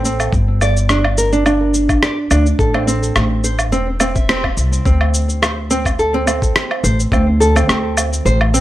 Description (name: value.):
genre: organic downtempo.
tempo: 106 BPM.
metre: 4/4.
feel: swing 53% on 16ths.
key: unclear.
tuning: A4 = 439 Hz.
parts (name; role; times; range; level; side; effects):
nylon-string guitar; arpeggios; 0.0-8.6 s; C4 to E5; -18 LUFS; right 1 dB; analog delay.
upright bass; bass; 0.0-8.6 s; E1 to D2; -16 LUFS; equal; sidechain pumping.
electronic cabasa, woodblock and rim click; drums; 0.0-8.6 s; none; -18 LUFS; equal; none.
electronic kick drum; drums; 0.3-7.2 s; none; -18 LUFS; equal; none.
room: little or no reverb.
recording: dry, gritty hardware recording.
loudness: -13 LUFS.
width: side -14 dB against mid.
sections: 0.0-4.9 A section; 4.9-8.6 B section.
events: band accent 4.3.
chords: 0.3 G5; 2.6 Am; 4.9 D5.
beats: | 0.33 0.90 1.46 2.03 | 2.60 3.16 3.73 4.29 | 4.86 5.43 5.99 6.56 | 7.12 7.69 8.26.